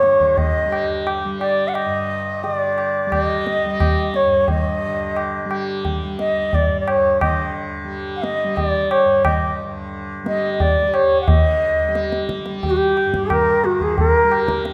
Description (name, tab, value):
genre	indian classical, Hindustani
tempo	88 BPM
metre	5/4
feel	straight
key	G raga todi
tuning	A4 = 437 Hz
part	bansuri	melody	0.0-14.6 s	F#4 to F#5	-20 LUFS	equal	none
part	tanpura	drone	0.0-14.7 s	G2 to G3	-28 LUFS	equal	none
part	tabla	percussion	0.0-14.7 s	none	-25 LUFS	equal	none
room	moderate scoring stage reverb, RT60 1.9 s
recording	none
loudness	-19 LUFS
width	mono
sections	0.0-11.3 A section; 11.3-14.7 B section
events	none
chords	none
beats	0.38 | 1.06 1.75 2.43 3.12 3.80 | 4.48 5.17 5.85 6.53 7.21 | 7.89 8.57 9.25 9.93 10.60 | 11.28 11.96 12.63 13.30 13.98 | 14.65